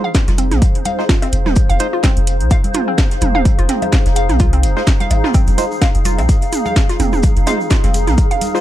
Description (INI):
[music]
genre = minimal techno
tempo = 127 BPM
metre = 4/4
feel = swing 56% on 16ths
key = F minor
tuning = A4 = 440 Hz
[part]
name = hollow square pluck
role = riff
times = 0.0-8.6 s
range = C4 to F5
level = -24 LUFS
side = equal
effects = chorus, sidechain pumping, dub echo
[part]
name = percussive organ stab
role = stabs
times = 0.0-1.9, 4.8-8.6 s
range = Ab3 to C5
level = -23 LUFS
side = right 2 dB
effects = chorus, phaser, dub echo
[part]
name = vintage brush drum kit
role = drums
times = 0.0-8.6 s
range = hi-hat, shaker, snare drum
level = -32 LUFS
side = left 1 dB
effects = sidechain pumping on hats, high-pass filter on hats, high-pass filter on snare, sidechain pumping on perc, high-pass filter on perc, high-pass filter on room
[part]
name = granular cloud pad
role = texture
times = 0.0-8.6 s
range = Eb4 to F5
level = -22 LUFS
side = left 2 dB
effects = built-in reverb, sidechain pumping
[part]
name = electronic kick drum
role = drums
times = 0.1-8.3 s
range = none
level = -14 LUFS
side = equal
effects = none
[part]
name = house drum kit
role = drums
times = 0.1-8.5 s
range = hi-hat, snare drum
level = -22 LUFS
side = right 1 dB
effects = none
[part]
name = punchy sub bass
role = bass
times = 0.3-8.2 s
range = Eb1 to C2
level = -16 LUFS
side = equal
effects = sidechain pumping
[part]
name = electronic congas, toms and cowbell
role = percussion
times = 0.3-8.5 s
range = none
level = -22 LUFS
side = right 4 dB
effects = overdrive, dub echo
[part]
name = egg shaker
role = percussion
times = 5.3-8.6 s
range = none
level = -33 LUFS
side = left 2 dB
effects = none
[sound]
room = little or no reverb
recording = dark, warm production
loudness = -12 LUFS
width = side -13 dB against mid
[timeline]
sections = 0.0-8.6 A section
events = none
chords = 0.0 Fm7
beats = 0.15 0.62 1.09 | 1.56 2.04 2.51 2.98 | 3.45 3.93 4.40 4.87 | 5.34 5.82 6.29 6.76 | 7.23 7.71 8.18